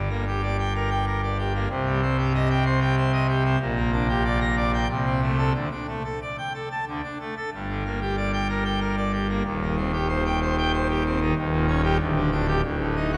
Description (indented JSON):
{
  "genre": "classical, organ toccata",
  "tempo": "94 BPM",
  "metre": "3/4",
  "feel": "straight",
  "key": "G minor",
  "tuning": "A4 = 442 Hz",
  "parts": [
    { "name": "pipe organ, full organ", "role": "solo", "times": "0.0-13.2 s", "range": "D1 to Bb5", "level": "-24 LUFS", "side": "equal", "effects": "none" }
  ],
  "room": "wet cathedral reverb, RT60 4.4 s",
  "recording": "none",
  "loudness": "-25 LUFS",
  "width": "mono",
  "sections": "0.0-13.2 A section",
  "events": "none",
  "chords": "0.0 Gm; 1.7 Cm; 3.6 Gm/Bb; 4.9 Am/C; 5.6 Dsus4; 6.9 D5; 7.5 Gm; 9.5 Cm/Eb; 11.4 Eb7; 12.0 G5/D; 12.6 D5"
}